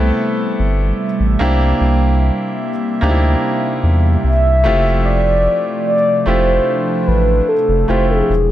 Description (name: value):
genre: contemporary R&B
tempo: 74 BPM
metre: 4/4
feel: straight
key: unclear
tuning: A4 = 440 Hz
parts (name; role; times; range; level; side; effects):
- clear grand piano; accompaniment; 0.0-8.3 s; A3 to A4; -20 LUFS; equal; none
- hollow soft pad; sustained chords; 0.0-8.5 s; C3 to E5; -21 LUFS; equal; chorus
- warm sub bass; bass; 0.0-8.5 s; E1 to E2; -15 LUFS; equal; none
- mellow horn-like synth lead; melody; 4.2-8.5 s; G#4 to E5; -15 LUFS; equal; chorus, tape echo
room: digital ambience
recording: none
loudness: -13 LUFS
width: side -13 dB against mid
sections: 0.0-8.5 A section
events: none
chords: 0.0 Am7; 1.4 C7; 4.6 Fmaj7